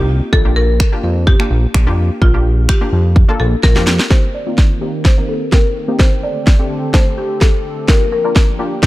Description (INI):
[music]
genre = dance-pop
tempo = 127 BPM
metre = 4/4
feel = straight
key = unclear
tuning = A4 = 439 Hz
[part]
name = buzzing marimba with hard mallets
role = melody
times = 0.0-8.9 s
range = F4 to D5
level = -21 LUFS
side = left 2 dB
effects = low-pass filter
[part]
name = wide unison pluck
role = accompaniment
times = 0.0-8.9 s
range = A3 to Bb4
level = -23 LUFS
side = left 1 dB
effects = sidechain pumping, low-pass filter
[part]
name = chorused synth bass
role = bass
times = 0.0-4.0 s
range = Bb1 to F2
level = -14 LUFS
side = equal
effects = sidechain pumping
[part]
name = house drum kit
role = drums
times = 0.3-8.9 s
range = finger snaps, kick drum, snare drum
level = -11 LUFS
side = equal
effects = none
[part]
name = sweeping resonant pad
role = sustained chords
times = 4.1-8.9 s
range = D3 to Bb4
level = -25 LUFS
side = right 1 dB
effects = chorus, sidechain pumping, low-pass filter
[sound]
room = digital ambience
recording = dark, warm production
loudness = -11 LUFS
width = side -17 dB against mid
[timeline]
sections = 0.0-4.1 A section; 4.1-8.9 B section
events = drum fill 3.6-4.1, 4.1-8.9; build-up 4.1-8.9; filter sweep 4.1-8.9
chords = 0.3 Bb6; 4.1 Cm7; 6.0 D7sus4; 7.9 Gm7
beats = | 0.33 0.80 1.27 1.74 | 2.22 2.69 3.16 3.63 | 4.11 4.58 5.05 5.52 | 6.00 6.47 6.94 7.41 | 7.88 8.36 8.83